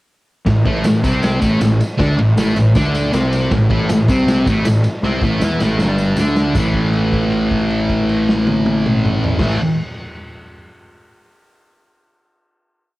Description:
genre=garage rock duo or trio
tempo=157 BPM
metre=4/4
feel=straight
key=unclear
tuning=A4 = 436 Hz
part: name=thick fuzz guitar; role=riff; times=0.5-9.6 s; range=G2 to E4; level=-15 LUFS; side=equal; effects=distortion, cassette tape
part: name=fuzz picked electric bass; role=bass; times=0.5-9.6 s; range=G1 to E2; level=-20 LUFS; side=equal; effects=overdrive
part: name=raw garage drum kit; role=drums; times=0.5-9.5 s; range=crash cymbal, kick drum, ride cymbal, snare drum, toms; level=-20 LUFS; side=equal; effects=cassette tape
part: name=tambourine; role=percussion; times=0.5-6.7 s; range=none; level=-37 LUFS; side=right 2 dB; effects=none
room=light reverb, small room ambience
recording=home recording on cassette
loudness=-13 LUFS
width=side -18 dB against mid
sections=0.5-6.6 riff; 6.6-9.6 final chord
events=drum fill 5.0-6.6; held note 6.6-9.4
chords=0.5 A5

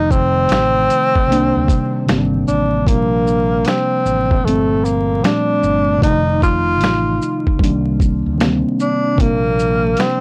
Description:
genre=lo-fi hip hop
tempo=76 BPM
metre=4/4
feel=swing 66% on 16ths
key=Bb major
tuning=A4 = 438 Hz
part: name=breathy tenor saxophone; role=melody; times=0.0-10.2 s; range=A3 to F4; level=-20 LUFS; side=equal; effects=none
part: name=muted felt-like synth keys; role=accompaniment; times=0.0-10.2 s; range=Bb2 to Eb4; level=-20 LUFS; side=equal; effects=chorus
part: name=fretless electric bass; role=bass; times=0.0-9.9 s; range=F1 to C3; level=-24 LUFS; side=equal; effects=transformer saturation, subtle chorus
part: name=lo-fi sampler-style drum kit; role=drums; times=0.1-10.2 s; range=finger snaps, hi-hat, kick drum, shaker, snare drum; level=-20 LUFS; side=equal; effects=none
room=light reverb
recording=dry, gritty hardware recording, transformer saturation, vinyl crackle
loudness=-16 LUFS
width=mono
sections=0.0-10.2 A section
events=none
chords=0.0 F7; 1.3 Cm9; 2.9 Bb69; 4.4 Gm11; 6.0 F7; 7.6 Cm9; 9.2 Bb69

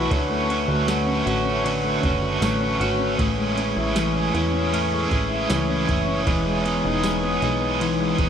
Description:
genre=dream pop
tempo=78 BPM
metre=4/4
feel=straight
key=unclear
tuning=A4 = 441 Hz
part: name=crunchy overdriven guitar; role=accompaniment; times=0.0-8.3 s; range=D3 to G#4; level=-26 LUFS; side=right 4 dB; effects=tremolo, lush chorus, shimmer reverb
part: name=mellow tonewheel organ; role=sustained chords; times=0.0-8.3 s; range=B4 to D#6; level=-26 LUFS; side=equal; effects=slow rotary speaker, shimmer reverb
part: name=clean electric guitar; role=arpeggios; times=0.0-8.3 s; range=A2 to F#4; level=-24 LUFS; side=left 2 dB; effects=lush chorus, ping-pong delay
part: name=plucky analog bass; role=bass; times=0.0-8.3 s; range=E1 to E2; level=-28 LUFS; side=right 1 dB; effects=none
part: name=glockenspiel with soft plastic mallets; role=texture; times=0.0-8.3 s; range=B5 to C#6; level=-40 LUFS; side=left 5 dB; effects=none
part: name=soft vintage rhythm box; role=drums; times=0.1-8.3 s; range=kick drum, ride cymbal, snare drum, tambourine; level=-29 LUFS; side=right 1 dB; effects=none
room=moderate plate reverb, RT60 3.4 s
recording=none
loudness=-20 LUFS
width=side -8 dB against mid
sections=0.0-8.3 A section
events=none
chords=0.1 Dmaj7; 3.2 Amaj7; 6.3 Emaj7

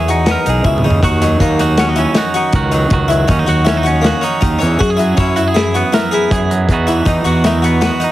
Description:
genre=math rock and midwest emo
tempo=159 BPM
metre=5/4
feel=straight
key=unclear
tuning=A4 = 440 Hz
part: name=clean electric guitar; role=accompaniment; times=0.0-8.1 s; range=E2 to C#5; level=-17 LUFS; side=right 4 dB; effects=none
part: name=harpsichord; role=arpeggios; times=0.0-8.1 s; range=A#3 to G#4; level=-18 LUFS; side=left 4 dB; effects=none
part: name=fuzz fingered electric bass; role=bass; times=0.0-7.9 s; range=B1 to F#2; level=-16 LUFS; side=equal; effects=overdrive
part: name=modern studio drum kit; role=drums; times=0.1-8.1 s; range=hi-hat, kick drum, snare drum, toms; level=-18 LUFS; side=equal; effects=none
room=little or no reverb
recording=heavily compressed radio sound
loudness=-11 LUFS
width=side -14 dB against mid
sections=0.0-8.1 A section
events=drum fill 0.7-1.0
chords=0.0 Emaj9#11; 1.0 D#m7; 4.8 F#9sus4; 6.7 Esus2

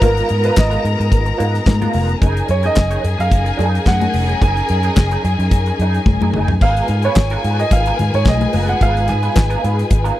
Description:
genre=disco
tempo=109 BPM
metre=4/4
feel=straight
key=G# dorian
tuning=A4 = 440 Hz
part: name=clear grand piano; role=melody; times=0.0-9.6 s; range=A#4 to G#5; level=-21 LUFS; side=right 3 dB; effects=none
part: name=warm studio string section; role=second line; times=0.0-10.2 s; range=G#4 to A#5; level=-23 LUFS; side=left 2 dB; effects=none
part: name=electric guitar through a small old amp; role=accompaniment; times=0.0-10.2 s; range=B3 to C#5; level=-25 LUFS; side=right 5 dB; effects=wah, tremolo
part: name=warm studio string section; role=sustained chords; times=0.0-10.2 s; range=F#3 to B4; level=-25 LUFS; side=left 2 dB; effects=none
part: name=vintage muted picked electric bass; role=bass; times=0.0-10.1 s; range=E#1 to G#2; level=-18 LUFS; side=equal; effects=none
part: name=damped 70s drum kit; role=drums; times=0.0-10.2 s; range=crash cymbal, handclaps, hi-hat, kick drum, snare drum, toms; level=-16 LUFS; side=equal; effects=none
part: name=congas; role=percussion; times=0.0-10.0 s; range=none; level=-22 LUFS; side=left 6 dB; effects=none
room=little or no reverb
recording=dry, close 1970s-style studio recording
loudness=-13 LUFS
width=side -14 dB against mid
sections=0.0-6.6 A section; 6.6-10.2 B section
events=drum fill 6.1-6.6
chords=0.0 G#m69; 2.2 F#69; 6.6 G#m69

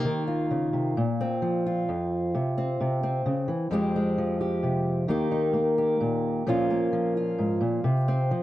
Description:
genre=folk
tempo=130 BPM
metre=3/4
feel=straight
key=unclear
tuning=A4 = 440 Hz
part: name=fingerpicked old ladder-braced acoustic guitar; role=solo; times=0.0-8.4 s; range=F2 to G4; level=-24 LUFS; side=equal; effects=none
room=moderate large studio reverb, RT60 0.9 s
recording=dark, warm production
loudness=-24 LUFS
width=side -15 dB against mid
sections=0.0-8.4 A section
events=none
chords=0.0 Cm7; 1.0 Bbsus2; 2.3 Csus4; 2.8 C; 3.7 Fmadd9; 5.1 Eb; 6.5 Bbm; 7.9 Csus4

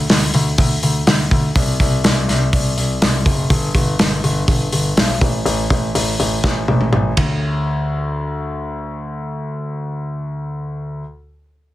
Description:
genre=quiet-loud alternative rock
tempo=123 BPM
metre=4/4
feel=straight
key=D major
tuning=A4 = 440 Hz
part: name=warm concert grand piano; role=bass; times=0.0-11.0 s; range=F#1 to D2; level=-19 LUFS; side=left 1 dB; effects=none
part: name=loose indie drum kit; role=drums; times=0.1-7.3 s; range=hi-hat, kick drum, ride cymbal, snare drum, toms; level=-17 LUFS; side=equal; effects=none
room=light reverb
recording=dense, heavily limited modern master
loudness=-15 LUFS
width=side -15 dB against mid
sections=0.0-7.4 A section; 7.4-11.3 B section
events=drum fill 6.4-7.4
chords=none

